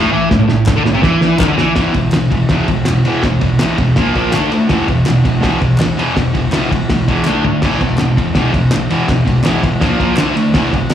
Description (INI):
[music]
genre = garage rock duo or trio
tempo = 164 BPM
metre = 4/4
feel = straight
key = unclear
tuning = A4 = 443 Hz
[part]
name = fuzz guitar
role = riff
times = 0.0-10.9 s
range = E2 to D4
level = -13 LUFS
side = equal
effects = distortion, slapback echo
[part]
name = cloth-damped thuddy drum kit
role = drums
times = 0.3-10.9 s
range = crash cymbal, kick drum, ride cymbal, snare drum, toms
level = -17 LUFS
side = equal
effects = none
[part]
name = group handclap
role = percussion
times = 0.7-10.9 s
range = none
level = -29 LUFS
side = left 1 dB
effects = none
[sound]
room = light reverb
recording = live gig heard through the venue's PA, club reverb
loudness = -11 LUFS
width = side -10 dB against mid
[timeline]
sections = 0.0-1.8 A section; 1.8-10.9 B section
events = drum fill 0.3-1.8, 7.3-7.6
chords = 0.0 A5; 1.8 E5; 4.0 A#5; 4.3 D5; 4.7 E5; 7.3 D5; 7.6 E5; 9.8 A#5; 10.2 D5